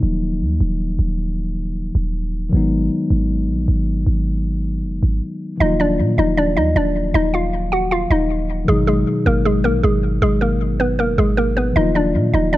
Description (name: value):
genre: hip hop, trap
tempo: 156 BPM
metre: 4/4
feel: half-time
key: Eb harmonic minor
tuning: A4 = 439 Hz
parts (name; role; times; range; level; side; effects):
- mellow tine electric piano; accompaniment; 0.0-12.6 s; Cb3 to F4; -22 LUFS; left 2 dB; none
- clean 808-style bass; bass; 0.0-12.6 s; Eb1 to Bb2; -19 LUFS; equal; none
- mallet-like synth pluck; melody; 5.6-12.6 s; Ab3 to Gb5; -18 LUFS; equal; chorus, ping-pong delay
room: little or no reverb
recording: none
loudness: -16 LUFS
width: side -16 dB against mid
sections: 0.0-5.6 A section; 5.6-12.6 B section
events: stop 5.2-5.6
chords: 0.0 Ebmadd9; 2.5 Abm7; 5.6 Ebmadd9; 8.7 Abm7; 11.8 Ebmadd9